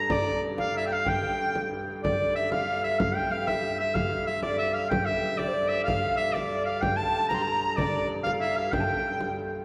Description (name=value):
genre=medieval dance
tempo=125 BPM (dotted quarters)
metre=6/8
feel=straight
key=G dorian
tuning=A4 = 438 Hz
part: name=bright shawm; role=melody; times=0.0-9.4 s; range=D5 to Bb5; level=-30 LUFS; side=equal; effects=none
part: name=breathy tenor recorder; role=second line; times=0.0-9.4 s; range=C5 to C6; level=-34 LUFS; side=equal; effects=none
part: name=dark hurdy-gurdy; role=drone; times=0.0-9.6 s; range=G2 to D3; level=-36 LUFS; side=equal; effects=none
part: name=frame drum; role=percussion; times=0.1-9.4 s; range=none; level=-35 LUFS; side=equal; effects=none
room=wet concert hall reverb, RT60 2.6 s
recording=recorded in a church or concert hall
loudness=-27 LUFS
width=mono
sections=0.0-2.0 A section; 2.0-9.6 A section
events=none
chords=none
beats=| 0.10 0.58 | 1.06 1.55 | 2.03 2.51 | 3.00 3.48 | 3.96 4.44 | 4.92 5.39 | 5.87 6.35 | 6.83 7.30 | 7.78 8.25 | 8.73 9.20